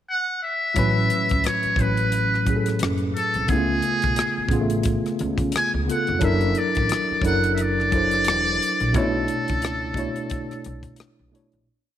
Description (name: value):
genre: R&B, neo-soul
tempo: 88 BPM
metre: 4/4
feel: swing 56% on 16ths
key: A major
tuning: A4 = 441 Hz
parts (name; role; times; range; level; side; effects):
- trumpet with metal mute; melody; 0.1-11.0 s; G#4 to G#5; -24 LUFS; equal; slapback echo
- tine electric piano; accompaniment; 0.7-11.7 s; A2 to C#5; -24 LUFS; equal; overdrive, fast stereo tremolo
- upright bass; bass; 0.8-11.7 s; E1 to C#3; -26 LUFS; equal; none
- tight funk drum kit; drums; 0.8-11.7 s; hi-hat, kick drum, rim click; -27 LUFS; left 1 dB; none
room: light reverb, studio reverb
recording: 1960s-style stereo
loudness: -20 LUFS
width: side -11 dB against mid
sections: 0.0-0.8 pickup bar; 0.8-11.7 verse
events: fade-out 8.9-11.7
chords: 0.0 N.C.; 0.8 A69; 3.5 C#7b13; 6.2 F#7alt; 8.9 Bm11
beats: 0.08 | 0.76 1.44 2.12 2.81 | 3.49 4.17 4.85 5.53 | 6.21 6.90 7.58 8.26 | 8.94 9.62 10.31 10.99